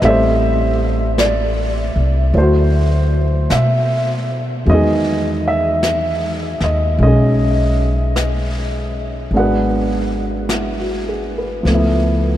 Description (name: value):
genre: jazz ballad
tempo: 52 BPM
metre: 4/4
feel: swing 67% on 8ths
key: unclear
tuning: A4 = 441 Hz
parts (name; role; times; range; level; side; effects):
- warm upright piano; accompaniment; 0.0-12.4 s; D#3 to F#5; -17 LUFS; equal; none
- upright bass; bass; 0.0-12.4 s; G#1 to B2; -17 LUFS; equal; none
- jazz brush drum kit; drums; 0.0-12.4 s; brushed snare drum, hi-hat, snare drum; -27 LUFS; equal; none
room: moderate huge ambient reverb, RT60 7.8 s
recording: in a vast, echoing space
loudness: -14 LUFS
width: side -12 dB against mid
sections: 0.0-12.4 A section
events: none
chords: 0.0 Am7; 2.3 D9; 4.7 Emaj9; 9.3 G#m7b5; 11.7 C#7alt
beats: | 0.03 1.19 2.35 3.51 | 4.67 5.83 6.99 8.15 | 9.32 10.48 11.66